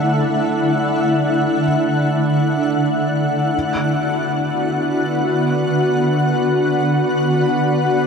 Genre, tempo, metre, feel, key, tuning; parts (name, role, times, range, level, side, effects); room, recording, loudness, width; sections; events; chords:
ambient; free time; A4 = 440 Hz
shimmering ambient pad; sustained chords; 0.0-8.1 s; D3 to F#5; -15 LUFS; equal; chorus, built-in reverb
felt-muted upright piano; arpeggios; 0.0-3.6 s; F#5; -34 LUFS; left 1 dB
wet huge ambient reverb, RT60 7.8 s; -15 LUFS; side -6 dB against mid
0.0-8.1 A section
0.0 D; 3.5 Bm/D